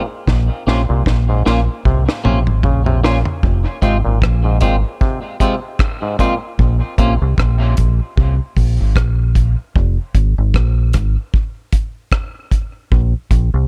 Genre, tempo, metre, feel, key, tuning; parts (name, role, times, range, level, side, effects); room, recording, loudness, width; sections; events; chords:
dub reggae; 76 BPM; 4/4; swing 57% on 16ths; F minor; A4 = 439 Hz
mellow clav; arpeggios; 0.0-7.2 s; Ab2 to Db3; -28 LUFS; equal; auto-wah, dub echo
deep dub fingered electric bass; bass; 0.3-13.7 s; F1 to C2; -17 LUFS; equal
deep reggae drum kit; drums; 0.3-13.5 s; hi-hat, kick drum, rim click, snare drum, toms; -19 LUFS; equal
clean electric guitar; accompaniment; 0.7-7.1 s; Ab3 to F4; -25 LUFS; equal; subtle chorus, dub echo
studio ambience; echo-heavy mix; -16 LUFS; mono
0.0-3.4 A section; 3.4-13.7 A section
drum fill 0.3-3.4
0.3 Bbm; 3.4 Fm; 6.6 N.C.; 9.8 Fm; 12.9 Abadd9 (rootless)